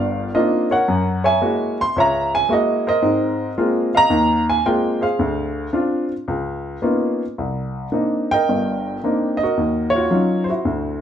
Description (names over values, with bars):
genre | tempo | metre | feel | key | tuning
solo jazz | 111 BPM | 4/4 | swing 67% on 8ths, rubato | C minor | A4 = 440 Hz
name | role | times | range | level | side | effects
warm baby grand piano | solo | 0.0-11.0 s | G1 to C6 | -17 LUFS | equal | none
room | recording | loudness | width
wet studio reverb, RT60 0.8 s | band playing live in one room | -17 LUFS | side -9 dB against mid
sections
0.0-7.4 A section; 7.4-11.0 B section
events
none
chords
0.0 Cm11; 0.9 F#9; 3.0 Ab69; 5.2 Dm7b5; 6.3 Db13; 7.4 Cm9; 9.6 Ebm9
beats
0.34 | 0.88 1.42 1.96 2.50 | 3.03 3.57 4.11 4.64 | 5.18 5.73 6.27 6.83 | 7.39 7.94 8.48 9.03 | 9.57 10.11 10.65